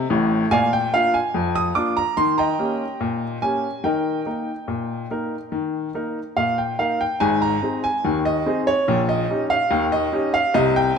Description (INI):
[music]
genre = ragtime piano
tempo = 72 BPM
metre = 2/4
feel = straight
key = unclear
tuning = A4 = 440 Hz
[part]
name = clear upright piano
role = solo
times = 0.0-11.0 s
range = Ab1 to Eb6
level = -19 LUFS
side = equal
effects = none
[sound]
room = wet echo chamber reverb, RT60 2.5 s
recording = none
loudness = -19 LUFS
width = side -6 dB against mid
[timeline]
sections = 0.0-7.2 A section; 7.2-11.0 B section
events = none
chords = 0.0 F7 (rootless); 0.5 Bb; 2.2 Eb7; 3.8 Eb; 7.2 Ab; 8.9 Eb7/Bb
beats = | 0.52 1.35 | 2.18 3.01 | 3.85 4.69 | 5.53 6.37 | 7.21 8.05 | 8.88 9.71 | 10.54